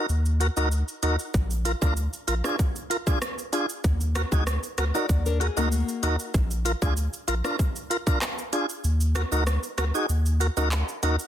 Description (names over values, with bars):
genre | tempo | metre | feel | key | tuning
dancehall | 96 BPM | 4/4 | straight | Eb harmonic minor | A4 = 439 Hz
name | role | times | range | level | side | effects
tonewheel organ | accompaniment | 0.0-11.2 s | D4 to Bb4 | -28 LUFS | equal | overdrive, fast rotary speaker
warm sub bass | bass | 0.1-11.2 s | Bb1 to Eb2 | -24 LUFS | equal | none
island pop drum kit | drums | 0.1-11.3 s | handclaps, hi-hat, kick drum, rim click, shaker | -28 LUFS | equal | overdrive, soft clipping on snare
egg shaker and timbales | percussion | 1.3-11.3 s | none | -41 LUFS | right 8 dB | none
nylon-string guitar | arpeggios | 4.9-6.3 s | Bb3 to D5 | -31 LUFS | left 7 dB | ping-pong delay
room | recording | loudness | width
digital ambience | dense, heavily limited modern master | -23 LUFS | side -10 dB against mid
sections
0.0-11.3 A section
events
break 0.0-1.3; kick muted 8.8-11.3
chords
0.0 Ebm; 1.3 Bb; 3.8 Ebm; 6.3 Bb; 8.8 Ebm